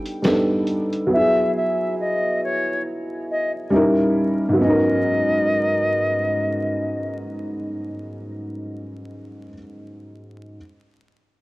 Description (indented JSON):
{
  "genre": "lo-fi hip hop",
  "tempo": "69 BPM",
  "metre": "4/4",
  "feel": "swing 56% on 16ths",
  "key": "G# minor",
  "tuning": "A4 = 441 Hz",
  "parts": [
    { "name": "dark upright piano", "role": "accompaniment", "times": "0.0-10.6 s", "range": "G#2 to A#4", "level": "-21 LUFS", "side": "equal", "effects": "none" },
    { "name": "dusty soul sampler-style drum kit", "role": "drums", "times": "0.1-1.1 s", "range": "hi-hat, snare drum", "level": "-26 LUFS", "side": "equal", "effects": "cassette tape" },
    { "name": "concert flute", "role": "melody", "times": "1.1-7.2 s", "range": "C#5 to E5", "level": "-22 LUFS", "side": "left 1 dB", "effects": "none" }
  ],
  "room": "studio reverb",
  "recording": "home recording on cassette, vinyl crackle",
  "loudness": "-18 LUFS",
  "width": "side -19 dB against mid",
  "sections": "0.0-4.6 A section; 4.6-8.1 B section",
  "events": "none",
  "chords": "0.0 B7alt; 1.1 E; 3.7 D#7b9; 4.6 G#m11"
}